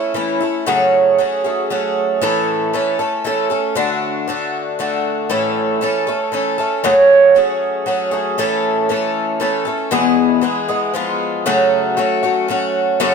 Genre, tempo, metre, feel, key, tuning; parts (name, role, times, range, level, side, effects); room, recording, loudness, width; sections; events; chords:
rock; 117 BPM; 3/4; straight; A major; A4 = 440 Hz
picked twelve-string acoustic guitar; solo; 0.0-13.1 s; E2 to A4; -14 LUFS; right 1 dB; tape echo
light reverb; -14 LUFS; side -6 dB against mid
0.0-11.5 A section; 11.5-13.1 B section
0.0 A; 0.7 F#madd9; 2.2 A; 3.8 D; 5.3 A; 6.8 F#madd9; 8.4 A; 9.9 E; 10.9 Fdim; 11.5 F#m